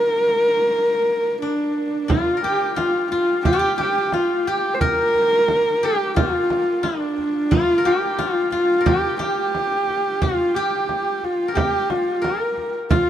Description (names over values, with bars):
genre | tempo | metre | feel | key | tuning
mongolian traditional, Mongolian folk | 89 BPM | 4/4 | straight | Bb gong mode | A4 = 440 Hz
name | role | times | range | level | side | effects
warm horsehead fiddle | melody | 0.0-13.1 s | D4 to C5 | -19 LUFS | equal | none
steel-string zither | second line | 1.4-13.1 s | D4 to Bb4 | -26 LUFS | left 4 dB | none
frame drum | percussion | 2.1-13.1 s | none | -22 LUFS | right 2 dB | none
room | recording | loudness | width
moderate huge ambient reverb, RT60 6.4 s | dark, warm production | -18 LUFS | side -10 dB against mid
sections
0.0-2.1 A section; 2.1-12.9 B section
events
none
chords
none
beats
0.06 0.74 1.42 | 2.10 2.78 3.45 4.13 | 4.81 5.48 6.16 6.83 | 7.51 8.18 8.86 9.53 | 10.21 10.88 11.56 12.23 | 12.91